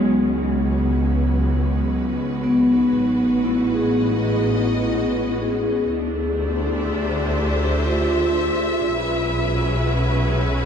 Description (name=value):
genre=ambient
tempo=61 BPM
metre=3/4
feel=straight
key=unclear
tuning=A4 = 439 Hz
part: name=clear symphonic string section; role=sustained chords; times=0.0-10.7 s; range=D#3 to E5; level=-26 LUFS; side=equal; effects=none
part: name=vibraphone with soft mallets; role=arpeggios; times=0.0-9.3 s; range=F#3 to G#4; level=-20 LUFS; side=equal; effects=tape echo
part: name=clear symphonic double bass section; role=bass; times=0.0-10.7 s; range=A1 to D2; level=-24 LUFS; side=equal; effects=tube saturation
room=wet cathedral reverb, RT60 6.5 s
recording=dark, warm production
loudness=-18 LUFS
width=side -7 dB against mid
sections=0.0-10.7 A section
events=fade-in on string section 0.0-10.7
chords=0.0 C#5; 2.9 Amaj7; 5.9 Dm7; 8.8 Bsus4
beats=0.94 1.94 | 2.94 3.93 4.92 | 5.90 6.87 7.86 | 8.85 9.83